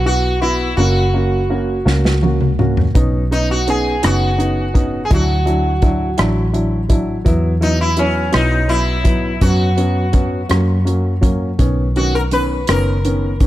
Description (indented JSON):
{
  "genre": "six-eight pop ballad",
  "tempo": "55 BPM (dotted quarters)",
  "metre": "6/8",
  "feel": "straight",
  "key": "B major",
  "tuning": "A4 = 440 Hz",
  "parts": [
    { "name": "sitar", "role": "melody", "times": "0.0-13.5 s", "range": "C#4 to B4", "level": "-20 LUFS", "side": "equal", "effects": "analog delay" },
    { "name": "vintage muted fingered electric bass", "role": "bass", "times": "0.0-13.5 s", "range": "F#1 to F#2", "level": "-18 LUFS", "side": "equal", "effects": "none" },
    { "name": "warm upright piano", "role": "accompaniment", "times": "0.1-13.5 s", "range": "D#3 to F#4", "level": "-20 LUFS", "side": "equal", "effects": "none" },
    { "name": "unplugged drum kit", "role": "drums", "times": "1.9-13.5 s", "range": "hi-hat, kick drum, rim click, snare drum, toms", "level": "-17 LUFS", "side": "equal", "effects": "none" }
  ],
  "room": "small room ambience",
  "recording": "dark, warm production",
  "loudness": "-13 LUFS",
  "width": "side -15 dB against mid",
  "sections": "0.0-13.5 A section",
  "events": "drum fill 1.9-3.0",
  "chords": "0.0 Esus2; 0.8 F#; 3.0 Badd9; 5.1 Dadd9; 7.3 Esus2; 9.4 F#sus4; 10.5 F#; 11.6 Badd9"
}